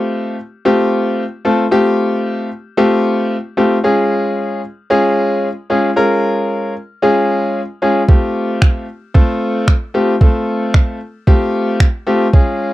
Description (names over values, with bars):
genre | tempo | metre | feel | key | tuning
dance-pop | 113 BPM | 4/4 | straight | unclear | A4 = 436 Hz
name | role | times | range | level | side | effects
clear grand piano | accompaniment | 0.0-12.7 s | Ab3 to Bb4 | -14 LUFS | left 1 dB | sidechain pumping
smooth R&B drum kit | drums | 8.1-12.5 s | finger snaps, kick drum | -10 LUFS | right 1 dB | none
room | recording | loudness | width
little or no reverb | dry, close 1970s-style studio recording | -12 LUFS | side -16 dB against mid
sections
0.0-12.7 A section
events
none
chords
0.0 Fadd9; 3.8 Db; 8.1 Fadd9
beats
0.12 0.65 1.18 | 1.72 2.25 2.78 3.31 | 3.84 4.37 4.90 5.43 | 5.96 6.49 7.03 7.56 | 8.09 8.62 9.15 9.68 | 10.21 10.74 11.27 11.80 | 12.34